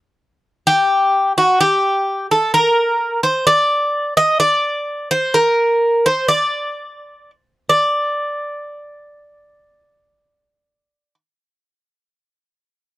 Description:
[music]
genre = greek folk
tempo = 128 BPM (eighths)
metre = 9/8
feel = straight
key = D phrygian dominant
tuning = A4 = 440 Hz
[part]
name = Greek bouzouki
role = solo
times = 0.7-11.1 s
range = F#4 to Eb5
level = -14 LUFS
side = equal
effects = none
[sound]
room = little or no reverb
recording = dry, close 1970s-style studio recording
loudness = -14 LUFS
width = side -16 dB against mid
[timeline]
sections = 0.0-7.7 A section; 7.7-11.9 B section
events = none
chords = none

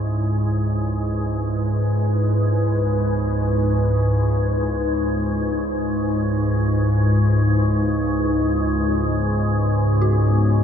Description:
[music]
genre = dark ambient drone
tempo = free time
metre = none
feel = none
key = unclear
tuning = A4 = 440 Hz
[part]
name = deep dark ambient pad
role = sustained chords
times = 0.0-10.6 s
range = C#3 to C#5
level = -26 LUFS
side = equal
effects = chorus, built-in reverb
[part]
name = dark detuned synth bell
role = arpeggios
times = 0.0-10.6 s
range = F#4 to G#4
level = -27 LUFS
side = left 2 dB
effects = chorus
[part]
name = organ-like drone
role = drone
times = 0.0-10.6 s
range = C#2 to G#2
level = -18 LUFS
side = equal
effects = ensemble chorus, built-in reverb
[sound]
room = wet huge ambient reverb, RT60 8.6 s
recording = dreamy mix soaked in reverb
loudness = -18 LUFS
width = side -8 dB against mid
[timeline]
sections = 0.0-10.6 A section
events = fade-in on ambient pad 0.0-10.6; fade-in on synth bell 0.0-10.6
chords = 0.0 C#m; 7.7 Bsus2/C#

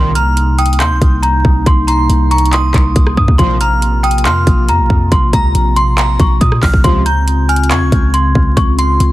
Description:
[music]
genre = hip hop, trap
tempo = 139 BPM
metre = 4/4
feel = half-time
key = C phrygian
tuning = A4 = 441 Hz
[part]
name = worn celesta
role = melody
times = 0.0-9.1 s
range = G5 to F6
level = -17 LUFS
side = equal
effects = tape echo
[part]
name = dark analog pad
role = sustained chords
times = 0.0-9.1 s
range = C3 to F4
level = -19 LUFS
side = left 1 dB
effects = lush chorus
[part]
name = analog synth brass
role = stabs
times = 0.0-0.1, 3.4-3.6, 6.8-7.0 s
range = C2 to F3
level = -20 LUFS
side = equal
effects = chorus
[part]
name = warm 808-style bass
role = bass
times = 0.0-9.1 s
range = Bb1 to Bb2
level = -13 LUFS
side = equal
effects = none
[part]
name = glassy synth bell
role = second line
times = 0.2-9.1 s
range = Bb5 to Ab6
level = -21 LUFS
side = right 2 dB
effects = chorus, tape echo
[part]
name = trap drum kit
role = drums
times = 0.2-9.1 s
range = handclaps, hi-hat, kick drum, rim click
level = -13 LUFS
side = equal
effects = none
[sound]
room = little or no reverb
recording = dense, heavily limited modern master, vinyl crackle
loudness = -9 LUFS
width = side -16 dB against mid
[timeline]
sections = 0.0-9.1 A section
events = none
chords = 0.0 Cm7; 3.4 Bbsus2; 6.8 Dbmaj7

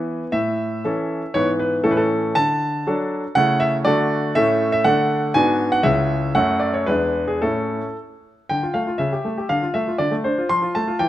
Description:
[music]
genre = classical-period piano sonatina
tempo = 120 BPM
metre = 2/4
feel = rubato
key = A major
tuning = A4 = 442 Hz
[part]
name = bright concert grand piano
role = solo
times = 0.0-11.1 s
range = C#2 to C6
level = -18 LUFS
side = equal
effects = none
[sound]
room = moderate recital hall reverb, RT60 1.4 s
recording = close, detailed microphones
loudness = -18 LUFS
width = side -13 dB against mid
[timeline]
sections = 0.3-8.5 A section; 8.5-11.1 B section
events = none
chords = 0.3 A; 1.4 E/G#; 1.9 A; 2.4 D; 3.4 A/C#; 3.9 D; 4.4 A; 4.8 D; 5.3 G#m7b5; 5.8 C#m; 6.3 F#m; 6.9 E7; 7.4 A; 8.5 Dm; 9.0 A7/C#; 9.5 Dm; 10.5 F

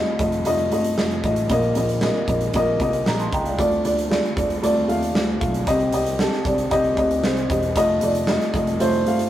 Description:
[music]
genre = piano-driven pop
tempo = 115 BPM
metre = 4/4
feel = straight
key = unclear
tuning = A4 = 440 Hz
[part]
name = dark upright piano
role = accompaniment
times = 0.0-9.3 s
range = Bb2 to C6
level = -20 LUFS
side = equal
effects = none
[part]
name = picked electric bass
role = bass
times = 0.2-9.3 s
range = E1 to Eb2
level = -28 LUFS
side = equal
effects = none
[part]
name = huge arena drum kit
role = drums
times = 0.2-9.3 s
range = hi-hat, kick drum, snare drum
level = -25 LUFS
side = right 1 dB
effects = none
[sound]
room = moderate studio reverb, RT60 0.6 s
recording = rough rehearsal-room recording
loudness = -18 LUFS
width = side -12 dB against mid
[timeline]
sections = 0.0-9.3 A section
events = upright piano fill 2.8-3.6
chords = 0.0 F7; 1.5 Bbsus4; 3.6 Dm; 5.7 Cm; 7.8 F7

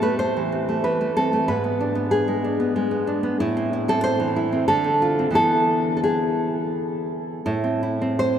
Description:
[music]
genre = romantic piece for solo classical guitar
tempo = 75-96 BPM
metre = 3/4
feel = rubato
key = A minor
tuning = A4 = 439 Hz
[part]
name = nylon-string guitar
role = solo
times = 0.0-8.4 s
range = G#2 to C5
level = -20 LUFS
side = equal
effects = none
[sound]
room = wet cathedral reverb, RT60 6.1 s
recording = in a vast, echoing space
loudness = -20 LUFS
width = side -9 dB against mid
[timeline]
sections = 0.0-8.4 A section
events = none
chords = 0.0 Am; 1.5 G#dim; 3.4 Am; 4.7 Dm7; 5.3 E; 7.4 Am

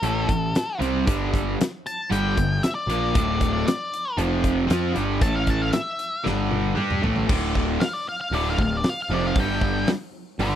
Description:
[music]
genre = blues rock power trio and southern rock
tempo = 116 BPM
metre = 4/4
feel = straight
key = unclear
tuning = A4 = 442 Hz
[part]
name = octave-fuzz lead guitar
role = melody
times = 0.0-10.6 s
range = A4 to A5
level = -27 LUFS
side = left 2 dB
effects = distortion
[part]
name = cranked stack guitar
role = riff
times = 0.0-10.6 s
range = D2 to G4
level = -24 LUFS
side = equal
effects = overdrive
[part]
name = fuzz picked electric bass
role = bass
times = 0.0-10.6 s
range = D1 to G2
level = -26 LUFS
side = equal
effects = overdrive
[part]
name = big rock drum kit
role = drums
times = 0.0-10.5 s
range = crash cymbal, hi-hat, kick drum, snare drum, toms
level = -26 LUFS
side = equal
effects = none
[sound]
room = little or no reverb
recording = dry, close 1970s-style studio recording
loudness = -21 LUFS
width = side -10 dB against mid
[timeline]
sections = 0.0-7.3 A section; 7.3-10.6 B section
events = drum fill 6.3-7.3; lead electric guitar solo 7.3-10.6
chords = 0.0 A5; 1.1 G5; 3.1 D5; 4.2 F5; 4.7 G5; 5.2 A5; 6.3 G5; 6.8 A5; 7.3 D5; 9.4 G5

